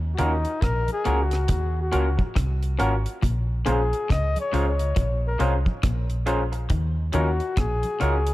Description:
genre	lovers rock reggae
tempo	69 BPM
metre	4/4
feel	swing 60% on 16ths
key	Eb dorian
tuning	A4 = 444 Hz
part	vintage muted fingered electric bass	bass	0.0-8.3 s	Ab1 to Eb2	-24 LUFS	equal	none
part	breathy flugelhorn	melody	0.1-8.3 s	Eb4 to Eb5	-29 LUFS	left 3 dB	tape echo
part	barky tine electric piano	accompaniment	0.2-8.2 s	Db4 to C5	-30 LUFS	left 3 dB	overdrive, tube saturation
part	twangy electric guitar	riff	0.2-8.3 s	Ab2 to Eb3	-35 LUFS	left 5 dB	none
part	electric guitar through a small old amp	stabs	0.2-8.1 s	Gb3 to Bb4	-31 LUFS	right 4 dB	none
part	deep reggae drum kit	drums	0.2-8.3 s	hi-hat, kick drum, rim click	-26 LUFS	equal	none
part	congas	percussion	0.2-8.0 s	none	-35 LUFS	right 3 dB	none
room	light reverb, small room ambience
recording	dark, warm production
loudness	-21 LUFS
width	side -17 dB against mid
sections	0.0-8.3 A section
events	flugelhorn solo 0.0-8.3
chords	0.0 Ebm7; 3.2 Bbm7; 6.7 Ebm7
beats	0.63 1.50 2.37 | 3.23 4.10 4.97 5.84 | 6.71 7.58

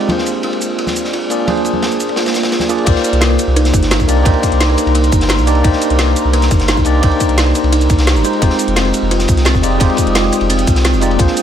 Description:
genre	liquid drum and bass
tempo	173 BPM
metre	4/4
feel	straight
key	C minor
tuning	A4 = 438 Hz
part	tine electric piano	accompaniment	0.0-11.4 s	Ab3 to D5	-18 LUFS	left 1 dB	slow stereo tremolo, ping-pong delay
part	ethereal airy pad	sustained chords	0.0-11.4 s	Ab3 to Eb6	-22 LUFS	equal	ensemble chorus, built-in reverb
part	crunchy breakbeat drum kit	drums	0.0-11.4 s	ride cymbal, snare drum	-23 LUFS	equal	high-pass filter on cymbals, high-pass filter on snare, high-pass filter on room
part	kalimba	arpeggios	0.1-11.4 s	Bb3 to G4	-19 LUFS	right 1 dB	ping-pong delay
part	congas	percussion	0.1-2.7 s	none	-23 LUFS	equal	none
part	drum and bass drum kit	drums	0.3-11.4 s	crash cymbal, hi-hat, rim click, shaker, snare drum	-20 LUFS	equal	none
part	warm sub bass	bass	2.9-11.3 s	F1 to C2	-15 LUFS	equal	tube saturation
part	electronic kick drum	drums	2.9-11.3 s	none	-15 LUFS	equal	none
room	light reverb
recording	none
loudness	-11 LUFS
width	side -9 dB against mid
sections	0.0-2.9 A section; 2.9-11.4 B section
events	drop 2.9-11.4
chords	0.1 Bb7; 2.9 Cm7; 8.2 Fm9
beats	| 0.09 0.44 0.79 1.14 | 1.48 1.83 2.17 2.52 | 2.87 3.22 3.56 3.91 | 4.26 4.60 4.95 5.30 | 5.64 5.99 6.34 6.68 | 7.03 7.38 7.72 8.07 | 8.42 8.77 9.11 9.46 | 9.80 10.15 10.50 10.85 | 11.19

